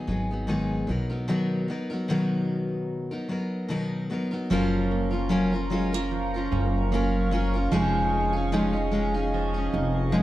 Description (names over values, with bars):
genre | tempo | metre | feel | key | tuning
acoustic pop | 75 BPM | 4/4 | swing 55% on 16ths | F# major | A4 = 440 Hz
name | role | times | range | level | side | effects
picked steel-string acoustic guitar | accompaniment | 0.0-10.2 s | G#2 to A#4 | -26 LUFS | left 1 dB | none
upright bass | bass | 0.1-10.2 s | E#1 to B1 | -28 LUFS | equal | none
chorused pulse-width pad | sustained chords | 4.5-10.2 s | G#4 to C#6 | -34 LUFS | equal | none
nylon-string guitar | arpeggios | 4.5-10.2 s | E#3 to D#4 | -31 LUFS | right 6 dB | none
room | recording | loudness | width
wet studio reverb, RT60 0.8 s | heard from further back in the room | -24 LUFS | side -15 dB against mid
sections
0.0-4.5 A section; 4.5-10.2 B section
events
none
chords
0.0 G#m7; 0.9 Bmaj7; 4.5 F#maj7; 7.7 C#add9/E#